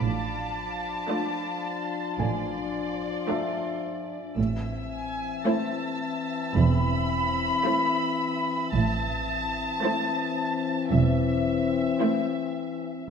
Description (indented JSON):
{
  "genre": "cinematic, suspense film score",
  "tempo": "55 BPM",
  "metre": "4/4",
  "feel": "straight",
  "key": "A harmonic minor",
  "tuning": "A4 = 445 Hz",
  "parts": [
    { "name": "muted symphonic violin section", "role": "melody", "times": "0.0-13.1 s", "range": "D5 to B5", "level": "-30 LUFS", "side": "left 1 dB", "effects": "none" },
    { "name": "warm French horn section", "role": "sustained chords", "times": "0.0-12.9 s", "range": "E3 to D4", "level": "-30 LUFS", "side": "left 6 dB", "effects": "none" },
    { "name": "muted symphonic cello section", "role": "bass", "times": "0.0-11.8 s", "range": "E2 to A2", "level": "-29 LUFS", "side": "right 4 dB", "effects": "none" },
    { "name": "muted symphonic double bass section", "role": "bass", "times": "0.0-11.8 s", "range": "E1 to A1", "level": "-27 LUFS", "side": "right 4 dB", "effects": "none" },
    { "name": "muted symphonic violin section", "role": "texture", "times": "0.0-12.5 s", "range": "E5 to E6", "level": "-39 LUFS", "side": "left 2 dB", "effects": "none" },
    { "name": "muted studio violin section", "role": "second line", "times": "1.1-12.8 s", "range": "E4 to D5", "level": "-34 LUFS", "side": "left 1 dB", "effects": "none" },
    { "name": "muted symphonic viola section", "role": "accompaniment", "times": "1.1-12.8 s", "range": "A3 to E4", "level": "-30 LUFS", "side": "right 3 dB", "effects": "none" },
    { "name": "felt-muted upright piano", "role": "texture", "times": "2.2-13.1 s", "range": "E5 to G#5", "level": "-38 LUFS", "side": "equal", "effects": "none" }
  ],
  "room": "wet scoring stage reverb, RT60 1.5 s",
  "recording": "none",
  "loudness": "-24 LUFS",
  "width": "side -6 dB against mid",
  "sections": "0.0-13.1 A section",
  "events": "none",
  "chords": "0.0 Dm/A; 4.4 Am",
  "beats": "| 0.01 1.10 2.19 3.28 | 4.37 5.46 6.56 7.65 | 8.74 9.83 10.92 12.01"
}